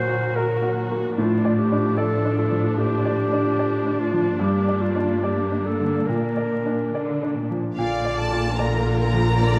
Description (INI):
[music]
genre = cinematic, emotional film score for orchestra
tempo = 74 BPM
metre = 4/4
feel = rubato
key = Bb major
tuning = A4 = 439 Hz
[part]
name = clear clarinet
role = second line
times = 0.0-7.4 s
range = F4 to C5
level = -28 LUFS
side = equal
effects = none
[part]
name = bright baby grand piano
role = accompaniment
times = 0.0-9.6 s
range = G2 to D5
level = -28 LUFS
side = equal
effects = none
[part]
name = rich symphonic viola section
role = accompaniment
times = 0.0-9.6 s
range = D3 to Gb4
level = -31 LUFS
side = equal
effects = none
[part]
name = warm studio cello section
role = bass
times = 0.0-9.6 s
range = G2 to D3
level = -28 LUFS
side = equal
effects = none
[part]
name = warm symphonic violin section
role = melody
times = 7.8-9.6 s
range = F5 to Bb5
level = -30 LUFS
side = equal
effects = none
[part]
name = warm symphonic violin section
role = second line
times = 7.8-9.6 s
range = Bb4 to D5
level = -32 LUFS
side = equal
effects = none
[part]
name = warm symphonic double bass section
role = bass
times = 7.8-9.6 s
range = Bb1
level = -26 LUFS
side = equal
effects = none
[sound]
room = light reverb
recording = vinyl crackle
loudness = -22 LUFS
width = mono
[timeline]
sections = 0.0-7.8 A section; 7.8-9.6 A section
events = none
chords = 0.0 Gb/Bb; 1.2 Dm/A; 4.4 Gm; 6.1 Bb